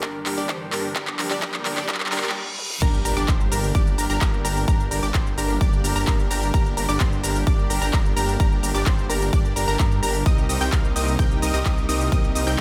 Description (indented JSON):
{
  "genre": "EDM, festival progressive house",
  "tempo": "129 BPM",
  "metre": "4/4",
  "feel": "straight",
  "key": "G minor",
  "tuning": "A4 = 440 Hz",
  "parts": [
    { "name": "lush unison pad", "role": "sustained chords", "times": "0.0-12.6 s", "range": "C3 to G4", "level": "-36 LUFS", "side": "equal", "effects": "chorus, sidechain pumping" },
    { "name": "supersaw stab", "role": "riff", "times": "0.0-12.6 s", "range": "C4 to G5", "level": "-30 LUFS", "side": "equal", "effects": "sidechain pumping, delay" },
    { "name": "detuned saw bass", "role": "bass", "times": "0.0-12.6 s", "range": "G1 to G2", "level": "-29 LUFS", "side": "equal", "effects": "sidechain pumping" },
    { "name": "big-room dance drum kit", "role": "drums", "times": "0.0-12.6 s", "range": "cabasa, crash cymbal, handclaps, hi-hat, toms", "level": "-31 LUFS", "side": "equal", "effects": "high-pass filter on snare, high-pass filter on hats, high-pass filter on toms, high-pass filter on cymbals, high-pass filter on perc, high-pass filter on room" },
    { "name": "electronic kick drum", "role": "drums", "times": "0.0-12.6 s", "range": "none", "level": "-23 LUFS", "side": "equal", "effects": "high-pass filter on kick, high-pass filter on room" },
    { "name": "riser, reverse cymbal and impact", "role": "sound effects", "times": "0.2-4.7 s", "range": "none", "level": "-36 LUFS", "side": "equal", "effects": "none" },
    { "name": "unison pluck", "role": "arpeggios", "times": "2.8-12.6 s", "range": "Bb5 to G6", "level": "-32 LUFS", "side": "equal", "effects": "sidechain pumping, delay" }
  ],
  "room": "light reverb",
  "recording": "high-pass filter",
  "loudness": "-22 LUFS",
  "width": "mono",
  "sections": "0.0-2.8 A section; 2.8-12.6 B section",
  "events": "build-up 0.0-2.8; drum fill 0.0-2.4, 2.5-2.8; filter sweep 0.0-2.8; riser 0.2-2.4; reverse cymbal 1.9-2.8; drop 2.8-12.6; impact 2.8-4.7",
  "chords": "0.0 Gm; 10.3 Cm7",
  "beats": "0.03 0.49 | 0.96 1.42 1.89 2.35 | 2.82 3.28 3.75 4.21 | 4.68 5.14 5.61 6.07 | 6.54 7.00 7.47 7.93 | 8.40 8.87 9.33 9.79 | 10.26 10.72 11.19 11.65 | 12.12 12.59"
}